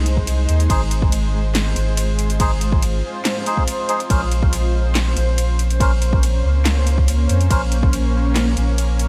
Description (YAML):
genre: deep dubstep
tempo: 141 BPM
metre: 4/4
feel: half-time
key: Bb minor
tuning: A4 = 443 Hz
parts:
  - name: granular cloud pad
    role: sustained chords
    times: 0.0-9.1 s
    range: Ab3 to C5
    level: -28 LUFS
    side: equal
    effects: built-in reverb
  - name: soft dub sub bass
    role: bass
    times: 0.0-9.1 s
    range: Ab1 to F2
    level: -20 LUFS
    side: equal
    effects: none
  - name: deep house drum kit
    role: drums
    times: 0.1-9.1 s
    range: handclaps, hi-hat, ride cymbal, snare drum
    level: -29 LUFS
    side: equal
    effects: overdrive
  - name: electronic kick drum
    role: drums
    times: 0.2-7.9 s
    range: none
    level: -21 LUFS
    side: equal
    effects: overdrive
  - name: melodica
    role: stabs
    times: 0.7-7.6 s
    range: Db4 to C5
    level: -28 LUFS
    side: equal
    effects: dub echo
room: light reverb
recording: none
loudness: -18 LUFS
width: mono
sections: 0.0-9.1 A section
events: none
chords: 0.0 Ab; 4.1 Bbmadd9